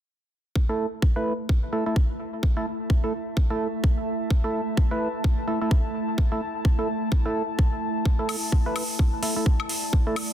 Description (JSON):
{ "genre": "bass house", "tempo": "128 BPM", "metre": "4/4", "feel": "swing 59% on 16ths", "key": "unclear", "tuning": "A4 = 441 Hz", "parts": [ { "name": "electronic kick drum", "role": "drums", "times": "0.6-10.0 s", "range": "none", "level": "-21 LUFS", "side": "equal", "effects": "studio reverb" }, { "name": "warbly tape-like pad", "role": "texture", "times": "1.0-10.3 s", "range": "A3 to A5", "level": "-30 LUFS", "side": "equal", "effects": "chorus, built-in reverb, sidechain pumping" }, { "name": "percussive organ stab", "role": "stabs", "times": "0.7-10.2 s", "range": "A3 to B4", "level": "-29 LUFS", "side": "right 2 dB", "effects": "chorus, sidechain pumping, tape echo" }, { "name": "electronic hi-hat and woodblock", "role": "drums", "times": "8.3-10.3 s", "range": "none", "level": "-30 LUFS", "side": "equal", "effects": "overdrive, studio reverb" } ], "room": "light reverb", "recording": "dense, heavily limited modern master", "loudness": "-22 LUFS", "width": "side -11 dB against mid", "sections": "0.6-10.3 A section", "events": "none", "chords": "0.6 A5", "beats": "| 0.56 1.02 1.49 1.96 | 2.43 2.90 3.37 3.84 | 4.30 4.77 5.24 5.71 | 6.18 6.65 7.12 7.59 | 8.05 8.52 8.99 9.46 | 9.93" }